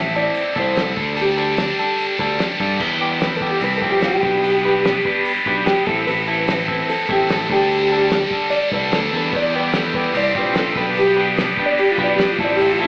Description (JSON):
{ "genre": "indie rock", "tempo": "147 BPM", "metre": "4/4", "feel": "straight", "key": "G major", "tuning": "A4 = 440 Hz", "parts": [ { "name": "mellow electric guitar", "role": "melody", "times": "0.0-12.9 s", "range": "F4 to E5", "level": "-22 LUFS", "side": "equal", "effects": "tape echo" }, { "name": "cranked stack guitar", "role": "riff", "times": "0.0-12.9 s", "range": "E2 to B4", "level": "-23 LUFS", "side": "equal", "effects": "overdrive, phaser" }, { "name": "modern bright picked electric bass", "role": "bass", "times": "0.0-12.9 s", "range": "A1 to G2", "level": "-28 LUFS", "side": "equal", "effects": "none" }, { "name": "biting overdriven guitar", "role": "riff", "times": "0.2-12.9 s", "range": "D3 to B4", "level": "-27 LUFS", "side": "equal", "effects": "analog chorus, slapback echo, tape echo" }, { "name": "cloth-damped thuddy drum kit", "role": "drums", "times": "0.2-12.7 s", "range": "crash cymbal, hi-hat, kick drum, snare drum", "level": "-29 LUFS", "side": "equal", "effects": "none" }, { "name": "combo organ", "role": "sustained chords", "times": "9.3-12.9 s", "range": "G4 to C6", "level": "-32 LUFS", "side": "equal", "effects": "lush chorus" } ], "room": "light reverb, small room ambience", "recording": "live gig heard through the venue's PA, club reverb, AM radio sound", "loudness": "-18 LUFS", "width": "mono", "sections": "0.0-2.8 A section; 2.8-12.9 B section", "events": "clean electric guitar solo 2.8-12.9", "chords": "0.0 Am; 1.0 Dsus4; 2.8 Em; 3.6 C; 4.2 G/B; 5.9 Am; 7.5 Dsus4; 9.3 Em7; 10.1 C; 10.8 Gadd9/B" }